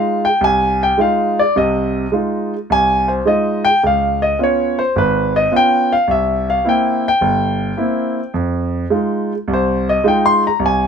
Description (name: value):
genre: solo jazz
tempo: 106 BPM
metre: 4/4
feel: swing 69% on 8ths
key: F minor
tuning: A4 = 440 Hz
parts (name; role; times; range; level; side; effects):
- warm grand piano; solo; 0.0-10.9 s; G1 to C6; -14 LUFS; equal; none
room: light reverb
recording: minimal, uncompressed stereo recording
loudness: -14 LUFS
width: side -7 dB against mid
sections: 0.0-10.9 A section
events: grand piano solo 0.0-10.9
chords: 0.0 Fm7; 3.8 Db7; 6.1 C7; 8.3 Fm7